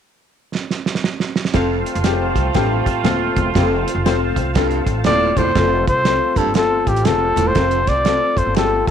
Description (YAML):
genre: uptempo 1960s-style soul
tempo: 120 BPM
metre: 4/4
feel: swing 63% on 8ths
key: F major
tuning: A4 = 440 Hz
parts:
  - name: cloth-damped thuddy drum kit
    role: drums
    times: 0.6-8.9 s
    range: hi-hat, kick drum, snare drum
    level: -21 LUFS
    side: right 4 dB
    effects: none
  - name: warm horn section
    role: second line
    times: 1.5-5.3 s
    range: A3 to F4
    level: -24 LUFS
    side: right 12 dB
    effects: none
  - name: warm upright piano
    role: accompaniment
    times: 1.5-8.9 s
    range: Ab3 to C5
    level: -22 LUFS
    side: left 12 dB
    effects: none
  - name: warm baritone saxophone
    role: riff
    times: 1.5-7.8 s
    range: F2 to A2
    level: -26 LUFS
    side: right 11 dB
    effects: none
  - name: upright bass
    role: bass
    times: 1.5-8.9 s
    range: Eb1 to C2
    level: -22 LUFS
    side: equal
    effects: none
  - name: congas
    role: percussion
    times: 1.5-8.9 s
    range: none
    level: -30 LUFS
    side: left 8 dB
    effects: none
  - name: overdriven tonewheel organ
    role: sustained chords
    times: 1.6-8.9 s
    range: C4 to A5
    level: -29 LUFS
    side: equal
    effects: slow rotary speaker, chorus vibrato
  - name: breathy trumpet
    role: melody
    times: 5.1-8.9 s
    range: G4 to D5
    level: -17 LUFS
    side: equal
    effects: none
room: light reverb, small room ambience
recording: 1960s-style stereo with parts hard left and right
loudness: -15 LUFS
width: side -8 dB against mid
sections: 0.0-1.5 A section; 1.5-5.6 B section; 5.6-8.9 C section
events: drum fill 0.5-1.5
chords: 0.0 N.C.; 1.5 F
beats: 0.04 0.54 1.04 | 1.55 2.05 2.55 3.05 | 3.55 4.05 4.55 5.05 | 5.56 6.06 6.56 7.06 | 7.56 8.06 8.56